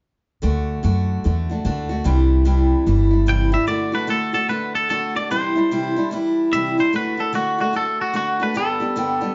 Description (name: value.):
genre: country.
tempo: 148 BPM.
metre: 4/4.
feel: swing 63% on 8ths.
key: D mixolydian.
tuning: A4 = 441 Hz.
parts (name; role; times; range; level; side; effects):
picked steel-string acoustic guitar; accompaniment; 0.4-9.3 s; G2 to G4; -24 LUFS; equal; none.
upright bass; bass; 0.4-3.5 s; G1 to F#2; -21 LUFS; equal; none.
twangy electric guitar; melody; 3.3-9.3 s; F#4 to G5; -24 LUFS; equal; none.
room: moderate studio reverb, RT60 0.8 s.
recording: heard from further back in the room, nothing above 7.5 kHz.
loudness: -20 LUFS.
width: mono.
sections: 0.4-3.7 A section; 3.7-9.3 B section.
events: none.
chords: 0.4 D; 2.1 Cadd9; 3.7 D; 5.3 Cadd9; 6.9 D; 8.6 G.